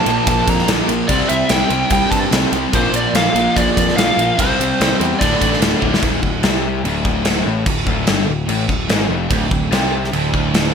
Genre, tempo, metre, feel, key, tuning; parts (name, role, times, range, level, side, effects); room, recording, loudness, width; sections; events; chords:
hard rock; 146 BPM; 4/4; straight; D minor; A4 = 440 Hz
biting lead guitar; melody; 0.0-5.6 s; C5 to Bb5; -19 LUFS; equal; overdrive, digital delay
overdriven semi-hollow guitar; riff; 0.0-10.7 s; D2 to C4; -22 LUFS; left 11 dB
overdriven semi-hollow guitar; riff; 0.0-6.0, 9.3-10.7 s; D2 to C4; -23 LUFS; right 11 dB; analog chorus
sludgy distorted guitar; riff; 0.0-10.7 s; D2 to C4; -24 LUFS; right 1 dB; overdrive
fuzz picked electric bass; bass; 0.1-10.7 s; D1 to G2; -22 LUFS; equal; overdrive
gated 80s drum kit; drums; 0.1-10.6 s; crash cymbal, kick drum, ride cymbal, snare drum; -18 LUFS; equal; gated reverb
moderate lush hall reverb, RT60 1.9 s, studio reverb; bright 1980s-style digital production; -14 LUFS; side -6 dB against mid
0.0-6.0 A section; 6.0-10.7 B section
drum fill 5.8
0.0 Bb5; 1.1 C5; 2.7 Bb; 4.4 C; 5.2 D5; 6.0 Dm